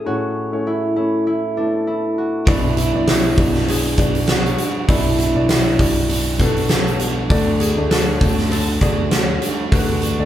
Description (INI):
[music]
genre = piano-driven pop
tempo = 99 BPM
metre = 4/4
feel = swing 56% on 16ths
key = unclear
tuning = A4 = 440 Hz
[part]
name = concert harp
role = melody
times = 0.0-10.3 s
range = D4 to A4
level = -22 LUFS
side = equal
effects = none
[part]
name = dark concert grand piano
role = accompaniment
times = 0.0-10.3 s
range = A2 to E5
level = -24 LUFS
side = left 2 dB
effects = none
[part]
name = crunchy overdriven guitar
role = riff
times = 2.5-10.3 s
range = B2 to F#4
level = -25 LUFS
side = right 5 dB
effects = none
[part]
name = picked electric bass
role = bass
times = 2.5-10.3 s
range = B1 to D2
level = -22 LUFS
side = equal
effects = none
[part]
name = huge arena drum kit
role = drums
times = 2.5-10.2 s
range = hi-hat, kick drum, snare drum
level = -18 LUFS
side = equal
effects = none
[sound]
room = moderate large studio reverb, RT60 0.9 s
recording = band playing live in one room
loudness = -15 LUFS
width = side -12 dB against mid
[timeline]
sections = 0.0-10.3 A section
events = none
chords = 0.0 A; 2.5 Bm; 7.3 D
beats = | 0.05 0.66 1.26 1.86 | 2.47 3.07 3.68 4.28 | 4.89 5.49 6.09 6.70 | 7.30 7.91 8.51 9.12 | 9.72